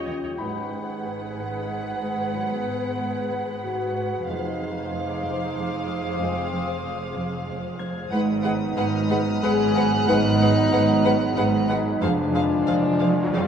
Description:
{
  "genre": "cinematic",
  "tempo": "93 BPM",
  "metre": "3/4",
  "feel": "straight",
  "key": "unclear",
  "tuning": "A4 = 444 Hz",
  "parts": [
    { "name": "muted studio violin section", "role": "melody", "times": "0.0-13.4 s", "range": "D#5 to F#5", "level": "-32 LUFS", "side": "right 1 dB", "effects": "none" },
    { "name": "muted studio violin section", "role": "second line", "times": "0.0-13.4 s", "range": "B4 to C5", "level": "-32 LUFS", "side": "left 3 dB", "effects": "none" },
    { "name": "muted studio viola section", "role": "accompaniment", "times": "0.0-13.4 s", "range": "G#4 to D#5", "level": "-38 LUFS", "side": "equal", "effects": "none" },
    { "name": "dark French horn section", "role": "sustained chords", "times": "0.0-13.5 s", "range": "B3 to G#4", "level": "-26 LUFS", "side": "left 1 dB", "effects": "none" },
    { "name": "wind-like tuned noise texture", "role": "sustained chords", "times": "0.0-13.5 s", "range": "C#4 to G5", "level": "-34 LUFS", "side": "equal", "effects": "built-in reverb" },
    { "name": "muted studio cello section", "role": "bass", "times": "0.0-13.5 s", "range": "F2 to G#2", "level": "-28 LUFS", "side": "right 2 dB", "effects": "none" },
    { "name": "muted chamber violin section", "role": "texture", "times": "0.0, 4.3-11.7 s", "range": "C6 to F#6", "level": "-35 LUFS", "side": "left 1 dB", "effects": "none" },
    { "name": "muted studio cello section", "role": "riff", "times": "0.1-13.5 s", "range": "F2 to D#3", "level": "-31 LUFS", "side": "right 2 dB", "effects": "none" },
    { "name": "muted symphonic double bass section", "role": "bass", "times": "0.1-13.5 s", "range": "F1 to D#2", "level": "-31 LUFS", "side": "right 2 dB", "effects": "none" },
    { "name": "warm trombone section", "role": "sustained chords", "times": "0.4-13.5 s", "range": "F3 to B3", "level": "-32 LUFS", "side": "right 3 dB", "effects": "none" },
    { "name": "concert harp", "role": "texture", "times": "0.4-13.5 s", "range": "B5 to D7", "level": "-40 LUFS", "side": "left 7 dB", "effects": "none" },
    { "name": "riser", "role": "sound effects", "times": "12.6-13.5 s", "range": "none", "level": "-28 LUFS", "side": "right 3 dB", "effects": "none" }
  ],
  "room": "wet scoring stage reverb, RT60 1.8 s",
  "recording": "none",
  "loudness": "-21 LUFS",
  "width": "side -8 dB against mid",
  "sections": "0.4-13.5 A section",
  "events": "riser 12.6-13.5",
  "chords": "0.4 G#m7; 4.3 Fm7; 8.1 G#m7; 12.0 Fm",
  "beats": "| 0.39 1.05 1.70 | 2.35 3.00 3.64 | 4.28 4.91 5.56 | 6.20 6.84 7.48 | 8.12 8.77 9.43 | 10.08 10.72 11.37 | 12.02 12.67 13.33"
}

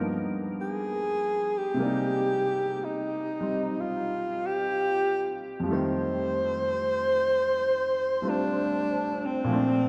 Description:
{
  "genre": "jazz",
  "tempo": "62 BPM",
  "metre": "4/4",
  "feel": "swing 69% on 8ths",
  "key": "unclear",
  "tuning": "A4 = 440 Hz",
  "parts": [
    { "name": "breathy alto saxophone", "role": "melody", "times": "0.0-9.9 s", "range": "C4 to C5", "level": "-29 LUFS", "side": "equal", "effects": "none" },
    { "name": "bright concert grand piano", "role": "accompaniment", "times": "0.0-9.9 s", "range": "F2 to D5", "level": "-33 LUFS", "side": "equal", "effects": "none" }
  ],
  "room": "wet cathedral reverb, RT60 5.6 s",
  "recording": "in a vast, echoing space",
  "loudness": "-28 LUFS",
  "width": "mono",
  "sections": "0.0-9.9 A section",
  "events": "none",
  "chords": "0.0 G7alt; 1.8 Cm9; 5.6 F9",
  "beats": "0.82 | 1.79 2.76 3.72 4.68 | 5.65 6.61 7.57 8.52 | 9.48"
}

